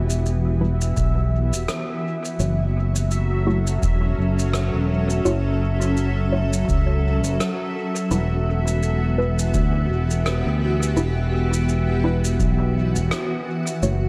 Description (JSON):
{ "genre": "ambient dub", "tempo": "84 BPM", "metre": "4/4", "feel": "swing 57% on 16ths", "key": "E dorian", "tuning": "A4 = 438 Hz", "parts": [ { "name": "granular cloud pad", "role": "sustained chords", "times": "0.0-14.1 s", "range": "E3 to A4", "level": "-28 LUFS", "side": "equal", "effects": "built-in reverb" }, { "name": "fingered electric bass", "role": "bass", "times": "0.0-14.1 s", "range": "E1 to D2", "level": "-23 LUFS", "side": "equal", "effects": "none" }, { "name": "bubbling stepped-filter texture", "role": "texture", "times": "0.0-14.1 s", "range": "E5", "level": "-35 LUFS", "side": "equal", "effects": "chorus, built-in reverb" }, { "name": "shaker and rim click", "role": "drums", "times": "0.1-14.0 s", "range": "none", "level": "-34 LUFS", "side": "equal", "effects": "dub echo" }, { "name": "filtered dub chord stab", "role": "stabs", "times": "0.6-14.0 s", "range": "G3 to C#5", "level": "-29 LUFS", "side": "equal", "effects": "phaser, analog chorus, dub echo" }, { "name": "electronic kick drum", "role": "drums", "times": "1.0-12.6 s", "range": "none", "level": "-27 LUFS", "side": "equal", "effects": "none" } ], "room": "light reverb, small room reverb", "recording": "none", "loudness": "-22 LUFS", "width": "mono", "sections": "0.0-14.1 A section", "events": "none", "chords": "0.0 Em; 2.4 F#m7; 8.1 Em7", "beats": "0.25 0.97 1.68 | 2.40 3.11 3.82 4.54 | 5.25 5.97 6.68 7.40 | 8.11 8.82 9.54 10.25 | 10.97 11.68 12.40 13.11 | 13.82" }